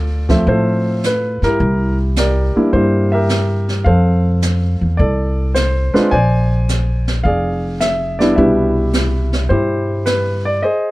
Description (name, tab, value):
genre	jazz piano trio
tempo	106 BPM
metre	4/4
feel	swing 69% on 8ths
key	C major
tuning	A4 = 443 Hz
part	warm grand piano	melody	0.0-10.9 s	B2 to Ab5	-17 LUFS	equal	none
part	upright bass	bass	0.0-10.6 s	F1 to A2	-16 LUFS	equal	none
part	jazz brush drum kit	drums	0.3-10.9 s	brushed snare drum, hi-hat, kick drum, snare drum	-22 LUFS	right 1 dB	none
room	little or no reverb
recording	none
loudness	-13 LUFS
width	side -19 dB against mid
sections	0.0-10.9 A section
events	none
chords	0.0 Dm7; 1.6 C7; 3.9 F; 6.1 Bb9; 8.4 Cmaj7